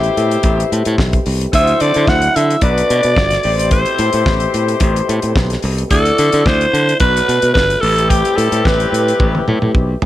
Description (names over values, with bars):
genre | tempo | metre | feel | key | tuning
disco | 110 BPM | 4/4 | straight | A dorian | A4 = 440 Hz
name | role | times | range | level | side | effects
raspy alto saxophone | melody | 0.0-9.5 s | G4 to F#5 | -15 LUFS | right 1 dB | none
dark French horn section | sustained chords | 0.0-10.1 s | B2 to B4 | -23 LUFS | right 1 dB | none
warm horn section | stabs | 0.0-10.0 s | G3 to E5 | -20 LUFS | left 6 dB | none
modern bright fingered electric bass | bass | 0.0-10.1 s | G1 to D3 | -17 LUFS | equal | none
damped 70s drum kit | drums | 0.0-10.1 s | hi-hat, kick drum, snare drum, toms | -18 LUFS | equal | none
room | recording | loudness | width
light reverb, small room ambience | none | -12 LUFS | side -14 dB against mid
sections
0.0-10.1 A section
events
drum fill 9.2-10.1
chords
0.0 Am9; 1.5 D9; 2.6 Bm7; 3.4 Am9; 5.9 D9; 7.0 Bm7; 7.8 Am9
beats
0.44 0.98 | 1.53 2.08 2.62 3.17 | 3.72 4.27 4.81 5.36 | 5.91 6.46 7.00 7.55 | 8.10 8.65 9.20 9.75